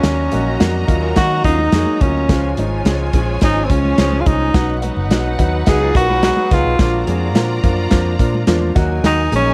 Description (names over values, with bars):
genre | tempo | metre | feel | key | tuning
uptempo 1960s-style soul | 107 BPM | 4/4 | straight | unclear | A4 = 440 Hz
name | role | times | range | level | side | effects
breathy tenor saxophone | melody | 0.0-9.5 s | C4 to Ab4 | -21 LUFS | equal | tape echo
clear studio string section | second line | 0.0-9.5 s | Eb4 to Bb5 | -29 LUFS | equal | plate reverb
clear grand piano | accompaniment | 0.0-9.5 s | F3 to Ab4 | -24 LUFS | equal | plate reverb
vintage muted fingered electric bass | bass | 0.0-9.5 s | Gb1 to Eb3 | -22 LUFS | equal | none
natural country drum kit | drums | 0.0-9.5 s | hi-hat, kick drum, snare drum | -19 LUFS | equal | none
congas | percussion | 0.0-9.5 s | none | -31 LUFS | equal | none
electric guitar through a small old amp | riff | 1.0-2.3, 5.7-6.8 s | Db4 to Cb5 | -28 LUFS | equal | none
room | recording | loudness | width
light reverb | vinyl crackle | -16 LUFS | mono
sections
0.0-9.5 A section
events
tenor saxophone solo 0.0-9.5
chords
0.0 Ebm; 2.3 Db; 4.5 Cb; 6.8 Bb; 8.8 Ebm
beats
| 0.04 0.61 1.17 1.73 | 2.29 2.86 3.42 3.98 | 4.55 5.11 5.67 6.23 | 6.79 7.36 7.92 8.48 | 9.04